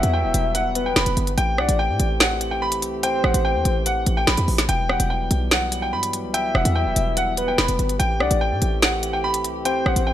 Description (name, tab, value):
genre	hip hop, drill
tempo	145 BPM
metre	4/4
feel	half-time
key	E minor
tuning	A4 = 440 Hz
part	clear concert grand piano	melody	0.0-10.1 s	F#5 to B5	-24 LUFS	equal	low-pass filter
part	soft octave-layered synth lead	second line	0.0-10.1 s	B4 to G5	-26 LUFS	left 2 dB	chorus, ping-pong delay
part	mellow French horn section	sustained chords	0.0-10.1 s	E3 to G4	-30 LUFS	equal	none
part	short 808-style bass	bass	0.0-10.1 s	D1 to A2	-23 LUFS	equal	none
part	drill drum kit	drums	0.0-10.1 s	hi-hat, rim click, snare drum	-21 LUFS	right 1 dB	none
room	light reverb, digital ambience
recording	none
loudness	-18 LUFS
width	side -11 dB against mid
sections	0.0-10.1 A section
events	none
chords	0.0 Emadd9; 1.4 Am7; 4.7 Emadd9; 8.0 Am7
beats	0.14 0.55 0.96 | 1.38 1.79 2.20 2.62 | 3.03 3.45 3.86 4.27 | 4.69 5.10 5.51 5.93 | 6.34 6.76 7.17 7.58 | 8.00 8.41 8.82 9.24 | 9.65 10.07